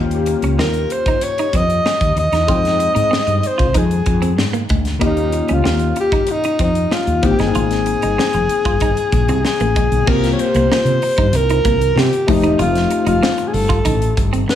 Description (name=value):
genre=polished 1980s jazz-funk pop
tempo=95 BPM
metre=4/4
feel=straight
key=F minor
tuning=A4 = 440 Hz
part: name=warm grand piano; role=accompaniment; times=0.0-14.6 s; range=Ab3 to G5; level=-23 LUFS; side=left 6 dB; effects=ensemble chorus
part: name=clean electric guitar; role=riff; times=0.0-14.5 s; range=Ab3 to F4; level=-25 LUFS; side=right 6 dB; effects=analog chorus
part: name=woody fretless electric bass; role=bass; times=0.0-14.4 s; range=E1 to C3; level=-18 LUFS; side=equal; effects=none
part: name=crisp fusion drum kit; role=drums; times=0.1-14.6 s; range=crash cymbal, hi-hat, kick drum, snare drum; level=-21 LUFS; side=equal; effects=none
part: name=breathy alto saxophone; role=melody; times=0.6-14.6 s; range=Eb4 to Eb5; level=-18 LUFS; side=left 1 dB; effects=tape echo
room=small room reverb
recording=studio reverb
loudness=-14 LUFS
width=side -10 dB against mid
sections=0.0-10.1 A section; 10.1-14.6 B section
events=none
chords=0.0 Eb9; 2.5 Fm9; 5.0 Eb9; 7.2 Abmaj7; 10.1 C7sus4; 12.3 F7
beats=0.59 1.22 1.85 | 2.49 3.12 3.75 4.39 | 5.02 5.65 6.29 6.92 | 7.55 8.18 8.81 9.45 | 10.08 10.71 11.34 11.97 | 12.60 13.23 13.86 14.49